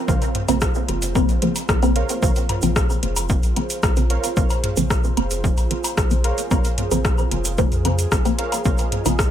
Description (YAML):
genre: dub techno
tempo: 112 BPM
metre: 4/4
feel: straight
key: Bb minor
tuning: A4 = 440 Hz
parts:
  - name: dark analog pad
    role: sustained chords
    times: 0.0-9.3 s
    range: F4 to Eb5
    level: -30 LUFS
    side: right 3 dB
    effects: chorus, sidechain pumping
  - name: warbly lo-fi synth keys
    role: riff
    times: 0.1-8.8 s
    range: Bb4 to F5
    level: -32 LUFS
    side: right 3 dB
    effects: chorus, sidechain pumping, dub echo
  - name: filtered dub chord stab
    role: stabs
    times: 0.1-9.3 s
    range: Db3 to C4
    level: -24 LUFS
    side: equal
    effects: phaser, sidechain pumping, dub echo
  - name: pure sine sub bass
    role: bass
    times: 0.1-9.3 s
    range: F1 to F2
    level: -24 LUFS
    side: equal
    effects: sidechain pumping
  - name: electronic kick drum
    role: drums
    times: 0.1-9.3 s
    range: none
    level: -21 LUFS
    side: equal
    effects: none
  - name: egg shaker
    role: percussion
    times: 0.1-9.3 s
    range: none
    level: -30 LUFS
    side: right 4 dB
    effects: none
  - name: deep house drum kit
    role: drums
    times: 0.2-9.3 s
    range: hi-hat, rim click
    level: -27 LUFS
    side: left 2 dB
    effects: overdrive
  - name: electronic woodblock and toms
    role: percussion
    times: 0.2-9.2 s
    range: none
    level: -31 LUFS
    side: left 2 dB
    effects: overdrive, sidechain pumping on toms, sidechain pumping on perc, dub echo
room: little or no reverb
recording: none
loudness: -18 LUFS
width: side -10 dB against mid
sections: 0.0-9.3 A section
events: filter sweep on synth stab 0.0-9.3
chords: 0.0 Bbmadd9